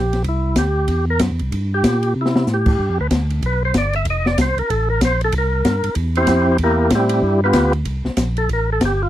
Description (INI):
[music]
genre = soul jazz organ trio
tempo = 189 BPM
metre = 4/4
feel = swing 61% on 8ths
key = C mixolydian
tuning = A4 = 440 Hz
[part]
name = percussive tonewheel organ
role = melody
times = 0.0-9.1 s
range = G3 to E5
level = -19 LUFS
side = equal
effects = slow rotary speaker
[part]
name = tonewheel organ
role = bass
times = 0.0-9.1 s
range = F1 to C3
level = -19 LUFS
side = equal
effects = overdrive, chorus vibrato, slow rotary speaker
[part]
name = open jazz drum kit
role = drums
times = 0.1-8.9 s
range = crash cymbal, hi-hat, kick drum, ride cymbal, snare drum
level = -21 LUFS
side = left 1 dB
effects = none
[sound]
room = little or no reverb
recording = dry, close 1970s-style studio recording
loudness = -15 LUFS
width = side -13 dB against mid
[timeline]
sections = 0.0-7.9 A section; 7.9-9.1 A section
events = tonewheel organ solo 0.0-7.9, 7.9-9.1; drum fill 2.2-2.5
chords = 0.0 C7; 2.8 G7; 4.1 F; 5.3 C7; 7.2 G7; 7.9 C7(no3)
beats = | 0.26 0.57 0.89 1.21 | 1.52 1.84 2.16 2.47 | 2.79 3.11 3.42 3.74 | 4.06 4.38 4.69 5.01 | 5.33 5.64 5.96 6.28 | 6.59 6.91 7.23 7.54 | 7.86 8.18 8.50 8.81